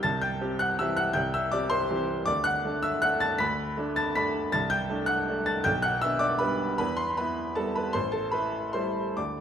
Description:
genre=classical, piano waltz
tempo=138-167 BPM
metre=3/4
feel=rubato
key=unclear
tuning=A4 = 439 Hz
part: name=clear upright piano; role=solo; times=0.0-9.4 s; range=A1 to B6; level=-25 LUFS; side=equal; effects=none
room=moderate recital hall reverb, RT60 1.4 s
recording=none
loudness=-25 LUFS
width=side -8 dB against mid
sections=0.0-9.4 A section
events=none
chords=0.0 C; 2.3 D; 4.5 D7/C; 5.6 G/B; 6.8 Em; 7.9 Am7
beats=| 0.04 0.40 0.78 | 1.15 1.52 1.90 | 2.27 2.64 3.03 | 3.40 3.77 4.15 | 4.53 4.89 5.27 | 5.65 6.02 6.40 | 6.78 7.16 7.55 | 7.94 8.32 8.73 | 9.16

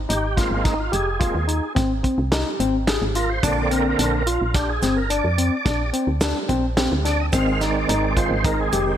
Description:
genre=progressive instrumental, band music in an uneven meter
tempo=108 BPM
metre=7/4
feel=straight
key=Ab lydian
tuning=A4 = 440 Hz
part: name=woody FM bass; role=bass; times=0.0-9.0 s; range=F1 to F2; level=-24 LUFS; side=equal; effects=none
part: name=overdriven tonewheel organ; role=accompaniment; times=0.1-9.0 s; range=D3 to F5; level=-24 LUFS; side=right 3 dB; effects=chorus vibrato, fast rotary speaker
part: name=barky tine electric piano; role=arpeggios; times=0.1-8.9 s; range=C4 to Ab4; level=-24 LUFS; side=left 2 dB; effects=overdrive, wide subtle chorus
part: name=warm soul drum kit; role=drums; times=0.1-8.9 s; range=hi-hat, kick drum, snare drum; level=-24 LUFS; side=equal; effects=gated reverb
part: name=tube shaker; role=percussion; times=3.4-9.0 s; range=none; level=-37 LUFS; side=right 11 dB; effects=none
room=light reverb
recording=bright 1980s-style digital production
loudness=-18 LUFS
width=side -10 dB against mid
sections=0.0-9.0 A section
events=tonewheel organ solo 0.0-9.0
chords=0.0 Abadd9; 3.4 Bbadd9; 7.3 Ab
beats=0.10 0.65 1.21 1.76 2.32 2.88 | 3.43 3.99 4.55 5.10 5.66 6.22 6.77 | 7.33 7.89 8.45

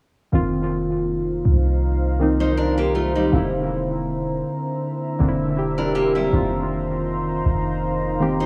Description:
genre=R&B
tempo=80 BPM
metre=4/4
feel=swing 54% on 16ths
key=unclear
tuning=A4 = 440 Hz
part: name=muted felt-like synth keys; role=accompaniment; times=0.3-8.5 s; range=D3 to G4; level=-25 LUFS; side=equal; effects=chorus, analog delay
part: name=deep dark ambient pad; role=sustained chords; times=1.1-8.5 s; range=D4 to Bb5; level=-30 LUFS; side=equal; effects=chorus, built-in reverb
part: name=clean 808-style bass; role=bass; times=0.3-8.5 s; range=E1 to C2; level=-26 LUFS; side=equal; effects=none
part: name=nylon-string guitar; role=arpeggios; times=2.4-8.5 s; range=G3 to C5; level=-26 LUFS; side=equal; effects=analog delay
room=moderate spring reverb, RT60 2.0 s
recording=echo-heavy mix, small room ambience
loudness=-22 LUFS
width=mono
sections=0.3-8.5 A section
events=none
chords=0.3 F7sus4; 3.3 C9/E; 6.3 F7sus4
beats=| 0.33 1.08 1.83 2.58 | 3.33 4.08 4.83 5.58 | 6.33 7.08 7.83

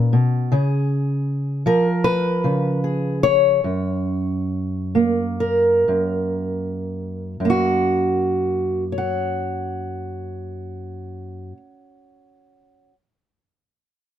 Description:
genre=folk, solo fingerstyle acoustic guitar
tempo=58-80 BPM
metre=4/4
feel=rubato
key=F# major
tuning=A4 = 442 Hz
part: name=fingerpicked old ladder-braced acoustic guitar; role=solo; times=0.0-12.9 s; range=F#2 to F#5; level=-19 LUFS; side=equal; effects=none
room=little or no reverb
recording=close, detailed microphones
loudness=-18 LUFS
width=side -10 dB against mid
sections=0.0-7.4 A section; 7.4-11.4 B section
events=slowing down 0.5-7.4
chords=0.0 B; 0.5 C#7; 3.7 F#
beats=| 0.52 1.28 2.05 2.84 | 3.66 4.51 5.41 6.38 | 7.40 8.42 9.42 10.41

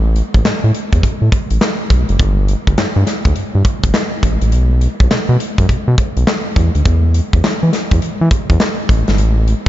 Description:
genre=R&B, new jack swing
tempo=103 BPM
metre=4/4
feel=swing 64% on 16ths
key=unclear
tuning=A4 = 440 Hz
part: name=round analog bass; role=bass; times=0.0-9.7 s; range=F#1 to E3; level=-13 LUFS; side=equal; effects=none
part: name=big rock drum kit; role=drums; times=0.2-9.7 s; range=handclaps, hi-hat, kick drum, snare drum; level=-15 LUFS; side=equal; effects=none
room=light reverb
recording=nothing above 7.6 kHz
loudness=-12 LUFS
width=side -14 dB against mid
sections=0.0-9.7 A section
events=none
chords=none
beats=0.45 1.03 1.62 | 2.20 2.78 3.36 3.95 | 4.53 5.11 5.69 6.28 | 6.86 7.44 8.02 8.61 | 9.19

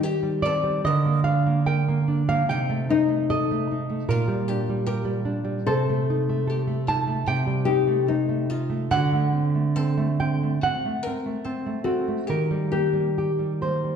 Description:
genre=romantic duo for nylon-string guitar and classical guitar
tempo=67-78 BPM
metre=4/4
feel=rubato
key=unclear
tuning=A4 = 439 Hz
part: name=nylon-string guitar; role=melody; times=0.0-14.0 s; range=D4 to Bb4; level=-27 LUFS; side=left 7 dB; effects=none
part: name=nylon-string guitar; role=accompaniment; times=0.0-14.0 s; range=Bb2 to A5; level=-22 LUFS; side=right 2 dB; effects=none
room=wet recital hall reverb, RT60 1.5 s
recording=recorded in a church or concert hall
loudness=-21 LUFS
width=side -7 dB against mid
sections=0.0-14.0 A section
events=none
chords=0.0 Cm/Eb; 0.9 Bb/D; 2.5 Adim/C; 4.1 Gm/Bb; 5.7 Am7b5/C; 8.9 D7; 12.3 Eb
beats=0.04 0.86 1.68 | 2.50 3.32 4.11 4.88 | 5.68 6.50 7.28 8.09 | 8.92 9.76 10.63 11.45 | 12.29 13.16

